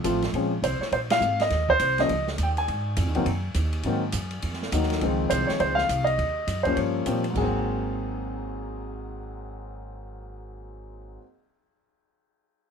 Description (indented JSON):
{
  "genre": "jazz piano trio",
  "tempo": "205 BPM",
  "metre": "4/4",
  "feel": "swing 61% on 8ths",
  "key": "Ab mixolydian",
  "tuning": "A4 = 440 Hz",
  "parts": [
    { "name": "warm grand piano", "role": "melody", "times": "0.0-11.2 s", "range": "Ab2 to Ab5", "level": "-25 LUFS", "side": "equal", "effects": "none" },
    { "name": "upright bass", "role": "bass", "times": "0.0-11.2 s", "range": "Ab1 to Bb2", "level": "-29 LUFS", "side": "right 1 dB", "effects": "none" },
    { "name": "open jazz drum kit", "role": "drums", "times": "0.0-7.4 s", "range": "crash cymbal, hi-hat, kick drum, ride cymbal, snare drum", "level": "-34 LUFS", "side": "right 2 dB", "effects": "none" }
  ],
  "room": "light reverb",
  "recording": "none",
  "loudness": "-23 LUFS",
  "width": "side -6 dB against mid",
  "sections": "0.0-5.0 A section; 5.0-7.4 B section; 7.4-9.7 C section",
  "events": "band accent 1.1",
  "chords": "0.3 Bb7(no3); 1.5 Eb7(no3); 2.7 Ab7(no3); 5.0 Dbmaj7; 6.2 Eb7; 7.4 Ab9"
}